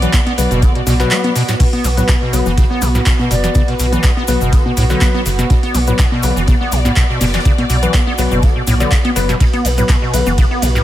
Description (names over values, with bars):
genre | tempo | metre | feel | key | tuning
acid house | 123 BPM | 4/4 | swing 53% on 16ths | B minor | A4 = 440 Hz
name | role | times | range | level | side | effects
dark studio string section | sustained chords | 0.0-10.8 s | B3 to D5 | -22 LUFS | right 1 dB | sidechain pumping
acid bass, square | riff | 0.0-10.8 s | A2 to B3 | -19 LUFS | equal | overdrive, wide subtle chorus, tape echo
percussive organ stab | stabs | 0.0-10.3 s | F#3 to D5 | -22 LUFS | left 4 dB | chorus, tape echo
round analog bass | bass | 0.0-10.8 s | F#1 to B1 | -17 LUFS | equal | sidechain pumping
booming analog drum machine | drums | 0.0-10.8 s | congas, crash cymbal, handclaps, hi-hat, ride cymbal, snare drum | -20 LUFS | equal | none
cabasa | percussion | 0.0-10.8 s | none | -28 LUFS | left 5 dB | none
electronic kick drum | drums | 0.1-10.5 s | none | -13 LUFS | equal | none
raw garage drum kit | drums | 0.1-10.8 s | hi-hat, snare drum | -32 LUFS | right 2 dB | none
silver concert flute | melody | 3.3-3.7 s | D5 | -26 LUFS | left 3 dB | tape echo
room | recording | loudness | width
light reverb | none | -11 LUFS | side -13 dB against mid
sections
0.0-10.8 A section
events
none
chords
0.0 B5